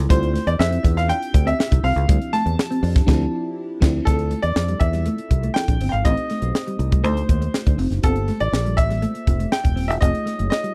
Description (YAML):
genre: polished 1980s jazz-funk pop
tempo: 121 BPM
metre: 4/4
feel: straight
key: D minor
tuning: A4 = 437 Hz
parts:
  - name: FM electric piano with soft pad layer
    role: accompaniment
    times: 0.0-10.7 s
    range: F3 to C#5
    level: -31 LUFS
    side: equal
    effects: subtle chorus
  - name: fingered electric bass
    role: bass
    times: 0.0-10.5 s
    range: Eb1 to F2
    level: -24 LUFS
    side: equal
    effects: none
  - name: bright grand piano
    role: melody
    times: 0.1-10.7 s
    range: A4 to A5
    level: -28 LUFS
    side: equal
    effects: none
  - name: mellow electric guitar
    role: riff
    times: 0.1-10.7 s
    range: G3 to D4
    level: -30 LUFS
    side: equal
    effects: subtle chorus
  - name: crisp fusion drum kit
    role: drums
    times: 0.1-10.7 s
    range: crash cymbal, hi-hat, kick drum, snare drum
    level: -21 LUFS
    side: equal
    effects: none
room: little or no reverb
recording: dry, close 1970s-style studio recording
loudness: -20 LUFS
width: mono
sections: 0.0-4.1 A section; 4.1-10.7 B section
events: band accent 3.1-4.1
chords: 0.1 Dm11; 4.1 Dm9; 6.1 Am7b5; 7.0 D7b9; 8.0 Gm11; 10.0 F7alt